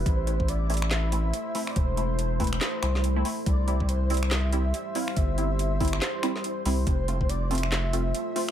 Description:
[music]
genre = deep dubstep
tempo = 141 BPM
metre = 4/4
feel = swing 59% on 16ths, half-time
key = unclear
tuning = A4 = 439 Hz
[part]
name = deep dark ambient pad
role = sustained chords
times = 0.0-8.5 s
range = G3 to C5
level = -34 LUFS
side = equal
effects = chorus, built-in reverb
[part]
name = saturated sub bass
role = bass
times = 0.0-8.1 s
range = E1 to C2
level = -26 LUFS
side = equal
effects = none
[part]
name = breathy flute-like synth lead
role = melody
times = 0.1-8.5 s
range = B4 to F5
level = -35 LUFS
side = left 1 dB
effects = ensemble chorus, dub echo
[part]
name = electronic kick drum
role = drums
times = 0.1-7.3 s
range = none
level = -26 LUFS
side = equal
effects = overdrive
[part]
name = garage drum kit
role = drums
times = 0.1-8.5 s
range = finger snaps, handclaps, hi-hat, snare drum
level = -32 LUFS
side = right 1 dB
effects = overdrive
[part]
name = filtered dub chord stab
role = stabs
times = 0.3-8.4 s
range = G3 to F4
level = -33 LUFS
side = right 2 dB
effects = phaser, lush chorus, dub echo
[sound]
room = digital ambience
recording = none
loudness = -24 LUFS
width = side -10 dB against mid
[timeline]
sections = 0.0-8.5 A section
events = none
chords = 0.1 Am; 3.5 C; 6.9 F

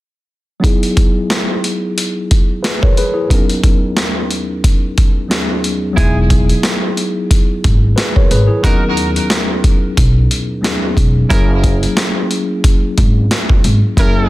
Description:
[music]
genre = hip hop, boom-bap hip-hop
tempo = 90 BPM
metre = 4/4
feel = swing 57% on 16ths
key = unclear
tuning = A4 = 442 Hz
[part]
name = mellow tine electric piano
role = accompaniment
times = 0.6-14.3 s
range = D#2 to C#5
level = -18 LUFS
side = left 1 dB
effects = medium stereo tremolo, cassette tape, high-pass filter, low-pass filter
[part]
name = boom bap sampler-style drum kit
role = drums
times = 0.6-14.2 s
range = hi-hat, kick drum, snare drum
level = -13 LUFS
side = equal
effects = none
[part]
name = warm horn section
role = stabs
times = 6.0-14.3 s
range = G#3 to A#4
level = -21 LUFS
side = right 2 dB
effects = high-pass filter, low-pass filter, digital delay
[part]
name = upright bass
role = bass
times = 6.0-14.3 s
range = E1 to D#2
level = -14 LUFS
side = equal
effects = none
[sound]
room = digital ambience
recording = dense, heavily limited modern master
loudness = -11 LUFS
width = side -17 dB against mid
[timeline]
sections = 0.6-6.0 A section; 6.0-14.3 B section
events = none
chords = 0.6 Emaj7; 3.3 Bmaj7/D#; 6.0 Emaj7; 11.3 F#9

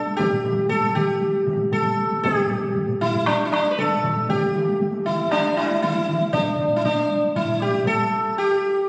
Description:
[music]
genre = japanese traditional, taiko drum ensemble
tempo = 117 BPM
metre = 4/4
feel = straight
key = unclear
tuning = A4 = 440 Hz
[part]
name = sitar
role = melody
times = 0.0-8.9 s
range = D4 to B4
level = -23 LUFS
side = equal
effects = none
[part]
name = taiko ensemble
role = percussion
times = 0.1-8.0 s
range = none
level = -31 LUFS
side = equal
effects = none
[part]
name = taiko ensemble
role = percussion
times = 0.2-8.0 s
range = none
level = -31 LUFS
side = equal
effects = none
[part]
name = taiko ensemble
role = percussion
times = 0.2-6.2 s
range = none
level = -32 LUFS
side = equal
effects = none
[part]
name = taiko ensemble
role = percussion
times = 0.2-6.5 s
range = none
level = -35 LUFS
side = equal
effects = none
[sound]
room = wet scoring stage reverb, RT60 1.7 s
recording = recorded on a phone in the room, studio reverb, compression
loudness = -22 LUFS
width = mono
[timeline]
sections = 0.0-8.9 A section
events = none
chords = none

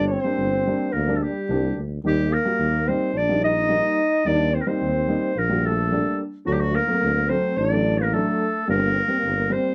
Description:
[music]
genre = klezmer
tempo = 109 BPM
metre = 4/4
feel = straight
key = unclear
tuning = A4 = 440 Hz
[part]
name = mellow clarinet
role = melody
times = 0.0-9.7 s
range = F#4 to Eb5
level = -26 LUFS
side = equal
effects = none
[part]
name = breathy trombone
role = second line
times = 0.0-9.7 s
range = F#3 to Eb4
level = -30 LUFS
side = equal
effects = none
[part]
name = dark upright piano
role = accompaniment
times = 0.0-9.7 s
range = F#3 to F#4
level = -29 LUFS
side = equal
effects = none
[part]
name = mellow tuba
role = bass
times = 0.0-9.6 s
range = G1 to Eb2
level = -27 LUFS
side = equal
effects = none
[sound]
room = light reverb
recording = close, detailed microphones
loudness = -22 LUFS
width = mono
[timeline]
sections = 0.0-9.7 A section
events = none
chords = 0.0 Gm; 2.1 Eb; 6.5 D; 8.7 Gm

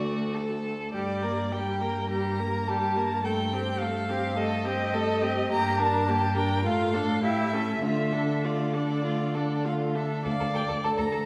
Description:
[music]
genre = quick classical-period movement for string quartet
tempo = 104 BPM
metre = 4/4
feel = rubato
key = D minor from 5.5 s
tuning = A4 = 440 Hz
[part]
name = rich violin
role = melody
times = 0.0-11.3 s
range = D5 to Bb5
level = -33 LUFS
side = equal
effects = none
[part]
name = rich violin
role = second line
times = 0.0-11.2 s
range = F4 to Bb4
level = -34 LUFS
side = equal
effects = none
[part]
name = clear viola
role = accompaniment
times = 0.0-11.3 s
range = G3 to D5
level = -34 LUFS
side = equal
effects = none
[part]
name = warm cello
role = bass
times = 0.0-11.2 s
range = D2 to D3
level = -33 LUFS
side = equal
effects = none
[sound]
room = wet recital hall reverb, RT60 1.4 s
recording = heard from further back in the room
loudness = -27 LUFS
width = mono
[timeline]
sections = 0.0-10.3 A section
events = none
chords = 0.0 D; 0.9 Gm; 3.2 Am7b5/G; 5.5 Gm; 6.6 Dm/A; 7.2 A7; 7.8 Dm

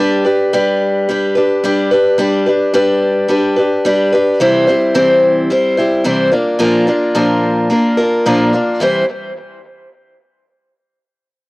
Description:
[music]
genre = rock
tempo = 109 BPM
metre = 4/4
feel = straight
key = C major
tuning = A4 = 440 Hz
[part]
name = picked acoustic archtop guitar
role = solo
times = 0.0-9.0 s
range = Bb2 to C5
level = -11 LUFS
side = equal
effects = cassette tape
[sound]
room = light reverb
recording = home recording on cassette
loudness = -11 LUFS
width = side -23 dB against mid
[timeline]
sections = 0.0-8.8 A section; 8.8-11.0 B section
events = none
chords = 0.0 G; 4.4 C; 6.3 Bb; 8.8 C

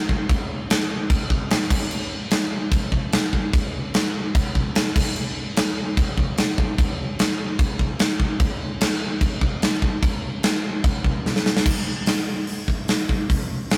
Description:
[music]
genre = rock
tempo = 148 BPM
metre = 4/4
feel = straight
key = none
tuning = none
[part]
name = huge arena drum kit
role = drums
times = 0.1-13.8 s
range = crash cymbal, hi-hat, kick drum, snare drum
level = -22 LUFS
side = equal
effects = none
[sound]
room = little or no reverb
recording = rough rehearsal-room recording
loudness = -22 LUFS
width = mono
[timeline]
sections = 0.0-11.7 A section; 11.7-13.8 B section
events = drum fill 11.3-11.7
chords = none

